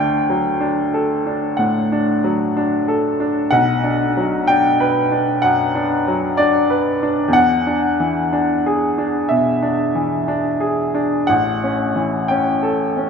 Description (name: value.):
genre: classical, romantic nocturne for solo piano.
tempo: 62 BPM.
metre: 4/4.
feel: rubato.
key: unclear.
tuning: A4 = 440 Hz.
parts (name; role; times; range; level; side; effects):
bright baby grand piano; solo; 0.0-13.1 s; A1 to G5; -15 LUFS; equal; none.
room: moderate concert hall reverb, RT60 2.2 s.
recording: minimal, uncompressed stereo recording.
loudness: -15 LUFS.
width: side -6 dB against mid.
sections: 0.0-13.1 A section.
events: none.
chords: 0.0 D; 3.5 Bm; 7.4 E7; 11.3 A.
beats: 0.60 1.58 2.55 | 3.50 4.49 5.44 6.40 | 7.36 8.34 9.31 10.28 | 11.29 12.29.